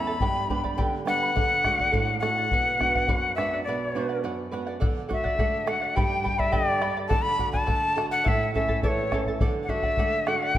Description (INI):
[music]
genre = andean folk, Andean ensemble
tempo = 104 BPM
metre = 2/4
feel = straight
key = unclear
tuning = A4 = 437 Hz
[part]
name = breathy bright quena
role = melody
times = 0.0-10.6 s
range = C#5 to B5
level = -25 LUFS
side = left 2 dB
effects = none
[part]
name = charango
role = accompaniment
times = 0.0-10.6 s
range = E4 to B5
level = -31 LUFS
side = right 1 dB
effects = none
[part]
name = flamenco guitar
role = accompaniment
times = 0.0-10.6 s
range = E2 to F#4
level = -30 LUFS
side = right 4 dB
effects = none
[part]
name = bombo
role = percussion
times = 0.2-10.6 s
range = none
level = -28 LUFS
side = left 1 dB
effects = none
[sound]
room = moderate recital hall reverb, RT60 1.7 s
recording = none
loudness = -22 LUFS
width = side -12 dB against mid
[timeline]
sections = 0.0-4.8 A section; 4.8-10.6 B section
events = break 3.7-4.8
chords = 0.2 G; 1.4 D; 2.5 Bm; 4.8 D; 6.0 G; 7.1 D; 8.3 A; 9.4 D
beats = | 0.22 0.79 | 1.37 1.94 | 2.52 3.09 | 3.66 4.24 | 4.81 5.39 | 5.96 6.53 | 7.11 7.68 | 8.25 8.83 | 9.40 9.98 | 10.55